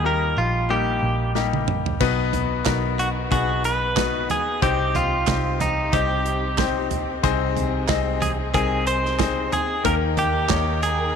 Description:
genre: piano-driven pop.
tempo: 92 BPM.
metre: 4/4.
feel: swing 56% on 16ths.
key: unclear.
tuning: A4 = 440 Hz.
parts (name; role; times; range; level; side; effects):
direct-recorded clean electric guitar; melody; 0.0-11.2 s; Eb4 to C5; -24 LUFS; right 1 dB; slapback echo.
bright grand piano; accompaniment; 0.0-11.2 s; B2 to Eb5; -25 LUFS; left 11 dB; none.
vintage muted picked electric bass; bass; 0.0-11.1 s; Bb1 to Eb2; -26 LUFS; right 1 dB; none.
modern studio drum kit; drums; 1.4-11.0 s; crash cymbal, handclaps, hi-hat, kick drum, snare drum, toms; -26 LUFS; right 6 dB; none.
muted studio string section; sustained chords; 2.0-11.2 s; C3 to G5; -33 LUFS; right 2 dB; none.
room: light reverb, small room ambience.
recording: 1960s-style stereo with parts hard left and right.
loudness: -19 LUFS.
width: side -7 dB against mid.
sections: 0.0-2.0 A section; 2.0-11.2 B section.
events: drum fill 1.4-2.0.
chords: 0.0 Eb; 2.0 B; 4.6 Cm; 7.2 Ab/C; 9.8 Eb.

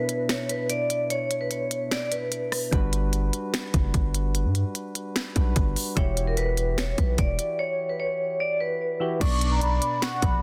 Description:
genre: hip hop, trap.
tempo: 148 BPM.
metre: 4/4.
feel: half-time.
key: B minor.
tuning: A4 = 440 Hz.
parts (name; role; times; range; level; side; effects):
vibraphone with medium hard mallets; melody; 0.0-2.7, 6.0-10.4 s; A#4 to C#6; -30 LUFS; equal; low-pass filter, tape echo.
soft electric-piano-like synth keys; accompaniment; 0.0-10.4 s; B2 to D5; -35 LUFS; equal; chorus, tremolo, low-pass filter.
trap drum kit; drums; 0.1-10.3 s; crash cymbal, finger snaps, hi-hat, kick drum, rim click, snare drum; -29 LUFS; equal; none.
hard-hitting 808-style bass; bass; 2.7-10.4 s; E1 to G2; -28 LUFS; equal; none.
soft octave-layered synth lead; second line; 9.2-10.4 s; D5 to F#5; -35 LUFS; equal; chorus, tape echo.
room: little or no reverb.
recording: dense, heavily limited modern master.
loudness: -26 LUFS.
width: mono.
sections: 0.0-9.2 A section; 9.2-10.4 B section.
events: break 0.0-2.7; kick muted 1.1-2.7.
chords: 0.0 Bmadd9; 2.7 Gmaj7; 6.0 Emadd9; 9.2 Bmadd9.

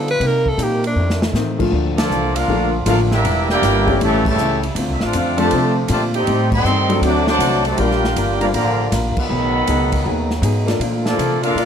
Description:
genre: jazz, big band swing.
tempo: 159 BPM.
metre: 4/4.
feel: swing 65% on 8ths.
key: Bb major.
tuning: A4 = 439 Hz.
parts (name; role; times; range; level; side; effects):
breathy tenor saxophone; melody; 0.0-1.2 s; D4 to B4; -20 LUFS; equal; none.
archtop guitar, miked and amplified; accompaniment; 0.0-11.7 s; F2 to Bb4; -26 LUFS; left 3 dB; none.
muted trombone section; sustained chords; 0.0-11.7 s; Bb2 to F4; -28 LUFS; equal; none.
upright bass; bass; 0.0-11.7 s; E1 to D3; -20 LUFS; equal; none.
swinging big-band drum kit; drums; 0.1-11.7 s; crash cymbal, hi-hat, kick drum, ride cymbal, snare drum; -25 LUFS; equal; none.
clear concert grand piano; accompaniment; 1.6-11.7 s; D3 to D5; -21 LUFS; left 3 dB; none.
clear trumpet section; melody; 2.0-11.7 s; Bb3 to D6; -21 LUFS; equal; none.
brilliant trombone section; second line; 2.0-11.7 s; C3 to A4; -21 LUFS; right 1 dB; none.
room: light reverb.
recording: none.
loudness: -15 LUFS.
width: side -8 dB against mid.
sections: 0.0-1.7 A section; 1.7-11.7 B section.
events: tenor saxophone solo 0.0-1.7; drum fill 1.0-1.3; band accent 1.9, 4.2, 6.5, 9.1.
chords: 0.2 Cm7; 1.0 F7; 1.7 Bbmaj7; 3.2 Em7b5; 4.0 A7; 4.8 Dm7; 6.3 Am7b5; 7.0 D7; 7.8 Gm7; 9.3 B13; 10.8 Bbmaj7.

